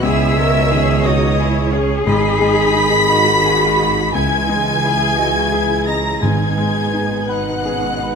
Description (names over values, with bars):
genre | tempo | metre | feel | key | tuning
cinematic, emotional film score for orchestra | 58 BPM (dotted quarters) | 6/8 | rubato | G# minor | A4 = 440 Hz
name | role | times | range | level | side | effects
rich studio violin section | melody | 0.0-8.2 s | D#6 to B6 | -23 LUFS | left 1 dB | none
mellow flute section | second line | 0.0-8.2 s | D#5 to B5 | -24 LUFS | right 2 dB | none
rich studio violin section | second line | 0.0-8.2 s | D#5 to B5 | -23 LUFS | left 2 dB | none
warm oboe | second line | 0.0-8.2 s | D#5 to B5 | -25 LUFS | left 1 dB | none
bright concert grand piano | accompaniment | 0.0-8.2 s | C#2 to D#5 | -23 LUFS | left 2 dB | none
rich studio viola section | accompaniment | 0.0-8.2 s | E3 to D#5 | -25 LUFS | right 1 dB | none
dark French horn section | sustained chords | 0.0-8.2 s | B2 to B4 | -22 LUFS | left 2 dB | none
rich studio double bass section | bass | 0.0-8.2 s | G#1 to C#2 | -21 LUFS | right 4 dB | none
warm studio cello section | bass | 0.0-8.2 s | B3 to A#4 | -23 LUFS | left 2 dB | none
timpani | percussion | 2.1-3.1, 6.2-7.3 s | G#2 | -22 LUFS | right 1 dB | none
room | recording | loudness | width
moderate scoring stage reverb, RT60 1.5 s | none | -13 LUFS | side -5 dB against mid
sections
0.0-8.2 A section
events
none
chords
0.0 C#madd9; 2.1 G#m; 4.1 C#madd9; 6.2 G#m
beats
| 0.03 1.05 | 2.07 3.10 | 4.14 5.18 | 6.22 7.30